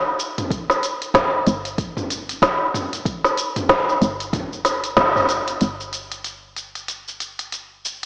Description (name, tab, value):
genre	organic downtempo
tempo	94 BPM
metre	4/4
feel	swing 59% on 16ths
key	unclear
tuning	A4 = 440 Hz
part	woody FM bass	bass	0.0-8.1 s	G1	-21 LUFS	equal	sidechain pumping
part	organic electronic drum kit	drums	0.2-8.1 s	hi-hat, shaker, snare drum, toms	-19 LUFS	equal	none
part	electronic kick drum	drums	0.5-5.1 s	none	-26 LUFS	equal	none
room	wet lush hall reverb, RT60 1.9 s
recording	worn, warbling old tape, cassette tape, warbly pitch drift, small speaker sound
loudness	-19 LUFS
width	side -30 dB against mid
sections	0.0-5.6 A section; 5.6-8.1 B section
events	band accent 5.0-5.3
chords	none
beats	| 0.51 1.14 1.78 2.42 | 3.06 3.70 4.33 4.97 | 5.61 6.25 6.89 7.53